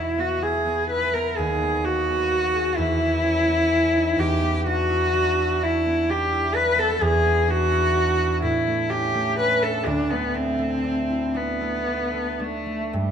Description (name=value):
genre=classical, romantic duo for cello and harp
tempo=37-44 BPM (dotted quarters)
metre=6/8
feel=rubato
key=unclear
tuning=A4 = 441 Hz
part: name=rich cello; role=melody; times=0.0-13.1 s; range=G3 to B4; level=-21 LUFS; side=equal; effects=none
part: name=concert harp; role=accompaniment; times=0.0-13.1 s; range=D2 to G#4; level=-26 LUFS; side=right 1 dB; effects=none
room=moderate scoring stage reverb, RT60 2.0 s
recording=none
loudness=-20 LUFS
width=side -8 dB against mid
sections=0.0-13.1 A section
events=none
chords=0.0 E5; 1.4 B/D#; 2.8 E5; 8.4 A; 9.9 D5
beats=| 1.38 2.78 | 4.20 5.63 | 7.03 8.44 | 9.88 11.37 | 12.95